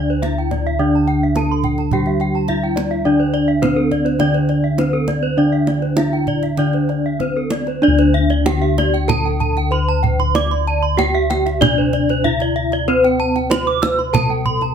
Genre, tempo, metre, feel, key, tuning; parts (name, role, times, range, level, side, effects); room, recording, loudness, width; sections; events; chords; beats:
Balinese gamelan; 95-106 BPM; 4/4; straight; D slendro; A4 = 439 Hz
gamelan-type bronze metallophone; melody; 0.0-14.7 s; C4-45c to D5; -21 LUFS; right 2 dB
gamelan-type bronze metallophone; accompaniment; 0.0-7.8 s; D3 to G3-35c; -23 LUFS; right 5 dB
gamelan-type bronze metallophone; arpeggios; 0.0-14.6 s; C5-45c to E6+30c; -22 LUFS; left 3 dB
gamelan-type bossed gongs; bass; 0.0-14.7 s; D2 to D5; -19 LUFS; left 3 dB
gamelan-type bronze metallophone; arpeggios; 0.1-14.7 s; A4+25c to D6; -25 LUFS; right 6 dB
kendang; percussion; 0.2-14.7 s; -23 LUFS; right 4 dB
light reverb; -14 LUFS; side -8 dB against mid
0.0-7.8 A section; 7.8-14.7 B section
0.23 | 0.80 1.36 1.92 2.49 | 3.05 3.62 4.20 4.78 | 5.37 5.97 6.58 7.20 | 7.82 8.46 9.09 9.72 | 10.35 10.98 11.61 12.24 | 12.88 13.51 14.14